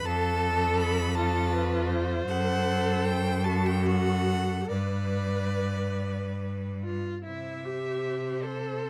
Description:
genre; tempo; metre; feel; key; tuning
classical, slow romantic movement for string quartet; 46-56 BPM (dotted quarters); 6/8; rubato; C major; A4 = 440 Hz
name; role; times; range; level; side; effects
clear violin; melody; 0.0-8.9 s; C5 to B5; -36 LUFS; equal; none
rich violin; second line; 0.0-8.9 s; A4 to E5; -38 LUFS; equal; none
rich viola; accompaniment; 0.0-8.9 s; E4 to B4; -35 LUFS; equal; none
clear cello; bass; 0.0-8.9 s; F2 to C3; -31 LUFS; equal; none
room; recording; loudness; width
little or no reverb; close, detailed microphones; -28 LUFS; mono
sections
0.0-7.3 A section; 7.3-8.9 B section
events
none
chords
0.1 F; 2.3 F#dim; 4.7 G; 7.3 C

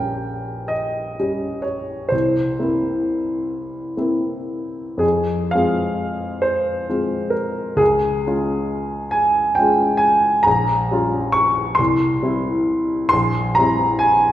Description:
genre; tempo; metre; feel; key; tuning
classical, romantic nocturne for solo piano; 36-46 BPM (dotted quarters); 6/8; rubato; unclear; A4 = 440 Hz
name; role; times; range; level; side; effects
warm baby grand piano; solo; 0.0-14.3 s; Bb1 to Db6; -17 LUFS; equal; none
room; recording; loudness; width
wet recital hall reverb, RT60 1.7 s; heard from further back in the room; -17 LUFS; side -12 dB against mid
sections
0.0-14.3 A section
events
none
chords
0.0 Gdim/Bb; 2.1 C7; 5.0 Fm; 7.8 Db; 10.5 Gm7b5/Bb; 11.8 C; 13.1 C7/Bb

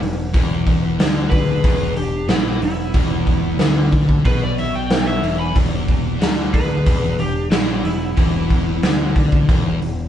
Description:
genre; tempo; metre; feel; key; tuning
blues rock power trio and southern rock; 92 BPM; 4/4; straight; E mixolydian; A4 = 440 Hz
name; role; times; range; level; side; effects
biting overdriven guitar; riff; 0.0-10.1 s; E2 to D3; -22 LUFS; left 2 dB; none
growling picked electric bass; bass; 0.0-10.1 s; E1 to D2; -24 LUFS; equal; overdrive
raw garage drum kit; drums; 0.0-10.0 s; hi-hat, kick drum, snare drum; -18 LUFS; equal; none
overdriven slide guitar; melody; 1.3-9.1 s; E4 to B5; -25 LUFS; left 1 dB; slapback echo
lead guitar through a small cranked amp; second line; 1.3-9.1 s; B3 to G#5; -31 LUFS; right 6 dB; overdrive
room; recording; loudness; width
little or no reverb; band playing live in one room, nothing above 10.4 kHz; -15 LUFS; side -10 dB against mid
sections
0.0-10.1 A section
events
none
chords
0.0 E5

